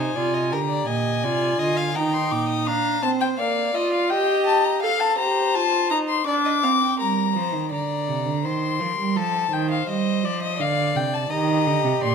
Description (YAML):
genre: classical, baroque-style fugue for string quartet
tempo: 84 BPM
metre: 3/4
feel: straight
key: unclear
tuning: A4 = 440 Hz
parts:
  - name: warm violin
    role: melody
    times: 0.0-12.1 s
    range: D5 to Eb6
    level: -24 LUFS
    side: left 7 dB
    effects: none
  - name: rich violin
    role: second line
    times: 0.0-12.1 s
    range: A4 to G5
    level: -28 LUFS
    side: left 1 dB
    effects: none
  - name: rich viola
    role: accompaniment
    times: 0.0-7.0, 11.3-12.1 s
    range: Bb3 to A4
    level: -24 LUFS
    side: right 3 dB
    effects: none
  - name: dark cello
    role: bass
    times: 0.0-2.7, 7.0-12.1 s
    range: Bb2 to G3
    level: -25 LUFS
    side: right 6 dB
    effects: none
room: moderate recital hall reverb, RT60 1.3 s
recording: none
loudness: -20 LUFS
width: side -6 dB against mid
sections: 0.0-7.0 A section; 7.0-12.1 B section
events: none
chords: 0.0 Ab/C; 0.5 Bb; 2.0 Eb; 2.7 Bb; 4.1 Eb/G; 4.8 F; 6.3 Csus2; 7.0 Gm; 8.4 Cm7/Eb; 10.6 F69; 11.3 Eb